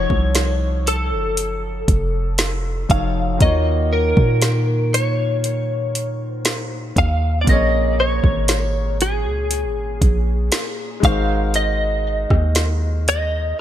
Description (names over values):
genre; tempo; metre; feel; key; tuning
contemporary R&B; 59 BPM; 4/4; straight; Bb minor; A4 = 440 Hz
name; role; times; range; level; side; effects
direct-recorded clean electric guitar; melody; 0.0-13.6 s; Ab4 to F5; -22 LUFS; equal; ensemble chorus
warm concert grand piano; accompaniment; 0.0-13.6 s; Bb2 to Db5; -26 LUFS; left 3 dB; wide subtle chorus
warm 808-style bass; bass; 0.0-13.5 s; F1 to Bb2; -20 LUFS; equal; none
smooth R&B drum kit; drums; 0.1-13.3 s; hi-hat, kick drum, rim click, snare drum; -19 LUFS; equal; none
room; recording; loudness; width
light reverb; bright 1980s-style digital production; -16 LUFS; side -11 dB against mid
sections
0.0-13.6 A section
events
none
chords
0.0 F7b9b13; 3.4 Ebm9; 7.5 Bbm7; 11.0 Ab7